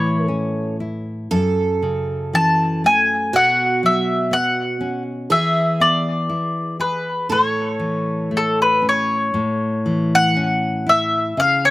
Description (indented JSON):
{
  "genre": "fado-style ballad",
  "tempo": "60 BPM",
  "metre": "2/4",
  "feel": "rubato",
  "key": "A major",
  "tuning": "A4 = 440 Hz",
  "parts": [
    { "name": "mandolin", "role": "melody", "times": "0.0-11.7 s", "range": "A4 to A5", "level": "-17 LUFS", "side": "left 1 dB", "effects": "slapback echo" },
    { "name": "picked twelve-string acoustic guitar", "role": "second line", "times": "0.0-8.8 s", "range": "F#4 to B4", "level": "-26 LUFS", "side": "right 5 dB", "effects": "none" },
    { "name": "nylon-string guitar", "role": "accompaniment", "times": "0.0-11.7 s", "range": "F#2 to G#4", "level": "-22 LUFS", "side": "left 1 dB", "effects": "none" }
  ],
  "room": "little or no reverb",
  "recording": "recorded outdoors, with no room sound",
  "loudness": "-16 LUFS",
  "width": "side -18 dB against mid",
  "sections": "0.0-9.3 A section; 9.3-11.7 A section",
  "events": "none",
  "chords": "0.0 A; 1.3 F#m7; 3.3 Bsus2; 5.3 E; 7.3 A"
}